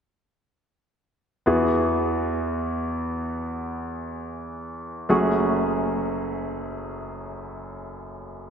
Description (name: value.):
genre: pop.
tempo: free time.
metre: none.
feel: none.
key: E major.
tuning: A4 = 440 Hz.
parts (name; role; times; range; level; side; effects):
bright concert grand piano; accompaniment; 1.5-8.5 s; F#1 to G#4; -24 LUFS; equal; none.
room: wet church reverb, RT60 3.2 s.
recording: dreamy mix soaked in reverb.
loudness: -23 LUFS.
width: side -7 dB against mid.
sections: 1.5-8.5 A section.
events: none.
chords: 1.5 Eadd9; 5.1 F#madd9.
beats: free time.